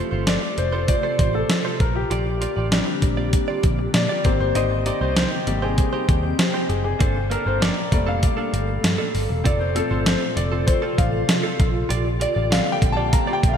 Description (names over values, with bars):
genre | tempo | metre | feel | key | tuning
1980s-style pop | 98 BPM | 4/4 | straight | F major | A4 = 440 Hz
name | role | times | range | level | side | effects
clear grand piano | accompaniment | 0.0-13.6 s | D3 to Bb5 | -24 LUFS | left 3 dB | wide subtle chorus
granular cloud pad | sustained chords | 0.0-13.6 s | Bb2 to G5 | -30 LUFS | equal | built-in reverb, ensemble chorus
direct-recorded clean electric guitar | riff | 0.0-13.5 s | Bb3 to D5 | -30 LUFS | right 6 dB | analog chorus, ping-pong delay
vintage muted picked electric bass | bass | 0.1-13.6 s | E1 to Bb2 | -24 LUFS | equal | none
clean 12-bit digital drum machine | drums | 0.3-13.6 s | hi-hat, kick drum, snare drum, tambourine | -21 LUFS | equal | gated reverb
room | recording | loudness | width
moderate lush hall reverb, RT60 2.1 s | bright 1980s-style digital production | -18 LUFS | side -8 dB against mid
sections
0.0-13.6 A section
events
grand piano solo 0.0-13.6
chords
0.0 F; 1.8 Bb6; 4.3 Abmaj7; 7.0 Gmadd9; 9.5 F; 11.6 Bb6